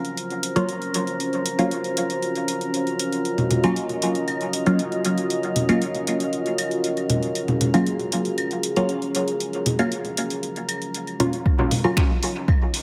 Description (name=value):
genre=dub techno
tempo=117 BPM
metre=4/4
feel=straight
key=Eb dorian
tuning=A4 = 440 Hz
part: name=dark analog pad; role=sustained chords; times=0.0-12.8 s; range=Db4 to Eb5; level=-28 LUFS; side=equal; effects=chorus, sidechain pumping
part: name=deep house drum kit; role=drums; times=0.0-12.8 s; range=finger snaps, hi-hat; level=-31 LUFS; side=equal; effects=overdrive
part: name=drifting glass-harmonics texture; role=texture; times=0.0-11.5 s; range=Bb4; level=-36 LUFS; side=equal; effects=chorus, built-in reverb, sidechain pumping
part: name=filtered dub chord stab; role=stabs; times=0.6-12.1 s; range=Gb3 to F4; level=-27 LUFS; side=equal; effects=phaser, cassette tape, sidechain pumping, dub echo
part: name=congas and claves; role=percussion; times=3.4-12.6 s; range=none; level=-30 LUFS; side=equal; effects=sidechain pumping on perc, dub echo
part: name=electronic kick drum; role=drums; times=11.5-12.6 s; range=none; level=-22 LUFS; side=equal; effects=overdrive
room=moderate lush hall reverb, RT60 1.9 s, digital ambience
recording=none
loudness=-23 LUFS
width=mono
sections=0.0-11.5 A section; 11.5-12.8 B section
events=none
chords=0.0 Ebm9